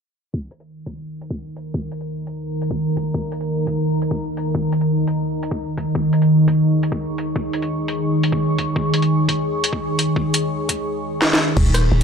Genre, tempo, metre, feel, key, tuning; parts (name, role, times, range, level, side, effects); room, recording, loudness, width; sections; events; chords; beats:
half-time drum and bass; 171 BPM; 4/4; half-time; A4 = 439 Hz
deep dark ambient pad; sustained chords; 1.7-12.0 s; Eb3 to Db6; -19 LUFS; equal; chorus, built-in reverb, sidechain pumping
electronic kick drum; drums; 0.3-11.6 s; -24 LUFS; equal; high-pass filter on kick
drum and bass drum kit; drums; 0.5-12.0 s; crash cymbal, hi-hat, rim click, snare drum, tambourine; -21 LUFS; equal
growling 808-style bass; bass; 11.6-12.0 s; Eb1; -16 LUFS; equal
moderate huge ambient reverb, RT60 6.1 s; low-pass filter; -18 LUFS; side -6 dB against mid
0.3-11.6 A section
filter sweep 0.3-11.6; drum fill 11.2-11.6
0.3 Eb5
| 0.34 0.69 1.04 1.39 | 1.74 2.09 2.44 2.79 | 3.15 3.50 3.85 4.20 | 4.55 4.90 5.25 5.60 | 5.95 6.30 6.65 7.00 | 7.36 7.71 8.06 8.41 | 8.76 9.11 9.46 9.81 | 10.16 10.51 10.87 11.22 | 11.57 11.92